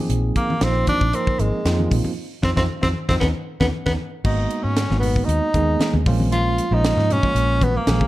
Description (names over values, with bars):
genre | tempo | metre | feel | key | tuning
electric jazz fusion | 116 BPM | 4/4 | straight | G# dorian from 4.3 s | A4 = 440 Hz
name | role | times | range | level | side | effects
bell-like tine electric piano | accompaniment | 0.0-8.1 s | F3 to Bb4 | -26 LUFS | right 3 dB | fast stereo tremolo
vintage muted fingered electric bass | bass | 0.1-8.0 s | Ab1 to G#2 | -21 LUFS | equal | none
crisp fusion drum kit | drums | 0.1-8.1 s | crash cymbal, hi-hat, kick drum, snare drum | -24 LUFS | equal | none
clear tenor saxophone | melody | 0.4-8.1 s | Ab3 to E#4 | -23 LUFS | equal | none
congas | percussion | 0.5-8.1 s | none | -27 LUFS | left 2 dB | none
room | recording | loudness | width
light reverb, small room ambience | dark, warm production | -18 LUFS | side -16 dB against mid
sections
0.0-4.3 A section; 4.3-8.1 B section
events
band accent 2.2-4.3; drum fill 4.0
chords
0.0 Bb9sus4; 2.2 F5; 3.2 Badd9/D#; 4.3 G#m9; 6.1 A#m7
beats
| 0.10 0.62 1.14 1.66 | 2.18 2.70 3.21 3.73 | 4.25 4.77 5.29 5.80 | 6.32 6.84 7.36 7.88